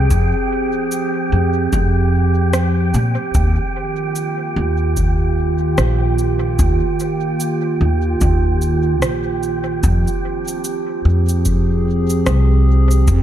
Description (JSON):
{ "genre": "ambient dub", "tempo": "74 BPM", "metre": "4/4", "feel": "swing 59% on 16ths", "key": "F minor", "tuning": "A4 = 440 Hz", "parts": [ { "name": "warbly tape-like pad", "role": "sustained chords", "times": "0.0-13.2 s", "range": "Eb3 to Ab4", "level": "-20 LUFS", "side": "right 2 dB", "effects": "chorus, built-in reverb" }, { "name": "upright bass", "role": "bass", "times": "0.0-13.2 s", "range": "Bb1 to Bb2", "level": "-15 LUFS", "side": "equal", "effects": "none" }, { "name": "wind-like tuned noise texture", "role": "texture", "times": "0.0-9.9 s", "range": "G5", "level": "-27 LUFS", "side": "right 2 dB", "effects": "built-in reverb" }, { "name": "electronic cabasa and rim click", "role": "drums", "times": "0.1-13.2 s", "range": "none", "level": "-26 LUFS", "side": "equal", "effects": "overdrive, studio reverb, dub echo" }, { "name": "electronic kick drum", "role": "drums", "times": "0.1-13.2 s", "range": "none", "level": "-21 LUFS", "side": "equal", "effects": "studio reverb" } ], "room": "light reverb, digital ambience", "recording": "dark, warm production", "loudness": "-15 LUFS", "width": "side -11 dB against mid", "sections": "0.0-9.8 A section; 9.8-13.2 B section", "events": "none", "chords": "0.0 Fm; 3.3 Eb; 9.8 Fm", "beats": "| 0.10 0.92 1.73 2.54 | 3.35 4.16 4.97 5.78 | 6.59 7.40 8.21 9.02 | 9.84 10.65 11.46 12.27 | 13.08" }